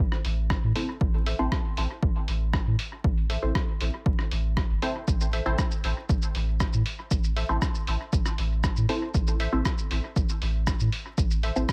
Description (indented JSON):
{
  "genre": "dub techno",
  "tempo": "118 BPM",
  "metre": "4/4",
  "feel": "straight",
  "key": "A minor",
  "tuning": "A4 = 440 Hz",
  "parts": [
    { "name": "soft dub sub bass", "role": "bass", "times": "0.0-11.7 s", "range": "G1 to A2", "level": "-29 LUFS", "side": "equal", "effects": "sidechain pumping" },
    { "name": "lo-fi sampler-style drum kit", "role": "drums", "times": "0.1-11.7 s", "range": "hi-hat, rim click, shaker", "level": "-36 LUFS", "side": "equal", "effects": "dub echo" },
    { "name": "electronic kick drum", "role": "drums", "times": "0.5-11.7 s", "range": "none", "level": "-29 LUFS", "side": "equal", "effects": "overdrive" },
    { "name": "filtered dub chord stab", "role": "stabs", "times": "0.8-11.6 s", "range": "C4 to C5", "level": "-35 LUFS", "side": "equal", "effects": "phaser, sidechain pumping, dub echo" },
    { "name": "wavetable chord stab", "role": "riff", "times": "1.3-11.6 s", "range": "A4 to E5", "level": "-42 LUFS", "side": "equal", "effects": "phaser, sidechain pumping, dub echo" }
  ],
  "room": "little or no reverb",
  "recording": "echo-heavy mix, vinyl crackle",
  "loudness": "-27 LUFS",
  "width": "mono",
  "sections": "0.0-11.7 A section",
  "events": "none",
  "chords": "0.0 Am",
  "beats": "0.50 | 1.01 1.52 2.03 2.54 | 3.04 3.55 4.06 4.57 | 5.08 5.58 6.09 6.60 | 7.11 7.62 8.13 8.64 | 9.14 9.65 10.16 10.67 | 11.18 11.69"
}